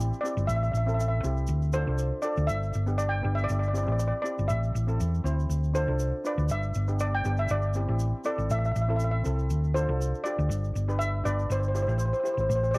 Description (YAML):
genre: calypso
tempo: 120 BPM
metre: 4/4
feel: swing 53% on 16ths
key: C major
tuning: A4 = 445 Hz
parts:
  - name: steel pan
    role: melody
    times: 0.0-12.8 s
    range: C5 to G5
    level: -30 LUFS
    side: equal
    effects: cassette tape, tape echo
  - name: steel pan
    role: accompaniment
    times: 0.0-12.5 s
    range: B3 to C5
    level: -35 LUFS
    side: equal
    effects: cassette tape
  - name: hollow-body short-scale fingered electric bass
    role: bass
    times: 0.0-12.8 s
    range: F#1 to E2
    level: -26 LUFS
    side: equal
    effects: none
  - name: tube shaker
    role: percussion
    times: 0.0-12.8 s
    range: none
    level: -47 LUFS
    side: right 3 dB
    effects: none
room: moderate spring reverb, RT60 1.4 s, small room ambience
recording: home recording on cassette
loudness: -25 LUFS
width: side -26 dB against mid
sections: 0.0-12.8 A section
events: none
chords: 0.5 Am; 1.5 Dm; 2.5 G; 3.5 C/G; 4.5 Am; 5.5 Dm; 6.5 G; 7.5 Cadd9/G; 8.5 Am; 9.5 Dm; 10.5 G; 11.5 C/G